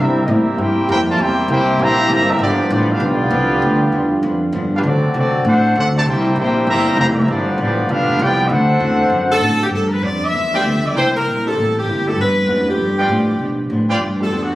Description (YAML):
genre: jazz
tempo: 197 BPM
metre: 4/4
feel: swing 62% on 8ths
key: G major, G mixolydian from 9.7 s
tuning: A4 = 439 Hz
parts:
  - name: mellow trumpet section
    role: melody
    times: 0.0-9.4 s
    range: B3 to Bb5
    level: -18 LUFS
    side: equal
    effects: none
  - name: clear trombone section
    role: second line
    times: 0.0-9.4 s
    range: C3 to G4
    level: -24 LUFS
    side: equal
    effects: none
  - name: vintage hollow-body jazz guitar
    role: accompaniment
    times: 0.0-14.5 s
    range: G2 to F#4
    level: -24 LUFS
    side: left 1 dB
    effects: none
  - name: clear trombone section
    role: sustained chords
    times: 0.0-9.7 s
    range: C3 to F#4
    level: -22 LUFS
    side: equal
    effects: none
  - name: upright bass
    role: bass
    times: 0.0-14.6 s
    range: F1 to D3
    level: -19 LUFS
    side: equal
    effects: none
  - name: warm saxophone section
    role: melody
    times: 9.3-14.6 s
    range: F#4 to E5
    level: -19 LUFS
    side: left 1 dB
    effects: none
  - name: warm grand piano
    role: accompaniment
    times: 10.5-14.6 s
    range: Ab3 to G4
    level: -25 LUFS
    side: right 1 dB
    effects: none
  - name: warm trumpet section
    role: stabs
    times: 10.5-14.0 s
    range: E4 to G5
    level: -21 LUFS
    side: right 1 dB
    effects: none
room: moderate scoring stage reverb, RT60 1.8 s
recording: recorded on a phone in the room, club ambience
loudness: -14 LUFS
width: side -16 dB against mid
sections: 0.0-9.7 A section; 9.7-14.6 B section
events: none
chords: 0.0 C7; 2.4 G7; 4.8 D7; 6.1 C7; 7.3 G7; 8.5 D7; 9.7 G7; 10.9 C7; 12.2 G7